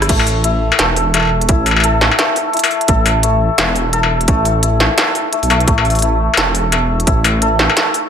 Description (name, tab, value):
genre	half-time drum and bass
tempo	172 BPM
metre	4/4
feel	swing 59% on 16ths, half-time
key	unclear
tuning	A4 = 441 Hz
part	santur	arpeggios	0.0-8.1 s	A3 to A4	-17 LUFS	left 2 dB	vintage 12-bit sampler grit, tape echo
part	dark detuned saw bass	bass	0.0-7.7 s	E1 to B1	-16 LUFS	right 1 dB	none
part	industrial drum kit	drums	0.0-8.0 s	crash cymbal, hi-hat, rim click, snare drum, struck metal	-15 LUFS	left 1 dB	none
part	electronic kick drum	drums	0.1-7.2 s	none	-14 LUFS	right 1 dB	none
room	light reverb, digital ambience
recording	none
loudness	-11 LUFS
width	side -8 dB against mid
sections	0.1-8.1 A section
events	drop 0.1-8.1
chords	0.1 A5